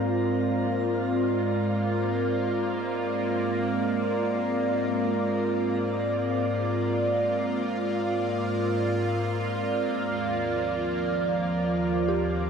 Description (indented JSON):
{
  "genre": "ambient",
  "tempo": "free time",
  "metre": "none",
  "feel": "none",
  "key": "unclear",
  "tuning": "A4 = 440 Hz",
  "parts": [
    { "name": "evolving wavetable pad", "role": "sustained chords", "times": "0.0-12.5 s", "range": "Eb2 to D5", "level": "-25 LUFS", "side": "equal", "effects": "chorus, built-in reverb, phaser" },
    { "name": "bowed-like drone", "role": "drone", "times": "0.0-12.5 s", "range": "Bb3 to F4", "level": "-32 LUFS", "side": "right 2 dB", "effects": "built-in reverb, phaser" },
    { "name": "soft synth bell", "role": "arpeggios", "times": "12.1-12.5 s", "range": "G4", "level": "-39 LUFS", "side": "left 1 dB", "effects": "none" }
  ],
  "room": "wet shimmer reverb, RT60 8.7 s",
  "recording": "none",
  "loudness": "-24 LUFS",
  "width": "side -6 dB against mid",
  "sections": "0.0-12.5 A section",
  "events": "none",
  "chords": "0.0 Abadd9; 10.0 Eb69"
}